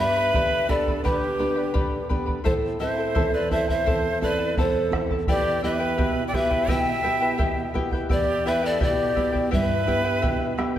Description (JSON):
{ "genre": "andean folk, Andean ensemble", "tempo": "85 BPM", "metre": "2/4", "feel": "straight", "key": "E minor", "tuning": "A4 = 440 Hz", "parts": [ { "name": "mellow hollow polished pan flute", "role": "melody", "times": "0.0-10.5 s", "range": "B4 to G5", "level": "-26 LUFS", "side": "left 1 dB", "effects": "none" }, { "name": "breathy bright quena", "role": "second line", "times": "0.0-10.6 s", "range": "G4 to E5", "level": "-28 LUFS", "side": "right 2 dB", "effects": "none" }, { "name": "charango", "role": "accompaniment", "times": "0.0-10.8 s", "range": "E4 to B5", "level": "-29 LUFS", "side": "left 3 dB", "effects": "none" }, { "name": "nylon-string guitar", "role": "accompaniment", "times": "0.0-10.8 s", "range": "E2 to A4", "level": "-28 LUFS", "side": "right 2 dB", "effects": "none" }, { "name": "bombo", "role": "percussion", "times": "0.3-10.8 s", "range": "none", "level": "-27 LUFS", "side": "equal", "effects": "none" } ], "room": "wet scoring stage reverb, RT60 1.6 s", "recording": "none", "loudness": "-21 LUFS", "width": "side -11 dB against mid", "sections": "0.0-10.8 A section", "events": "none", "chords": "0.0 G; 2.5 Am; 5.3 Em" }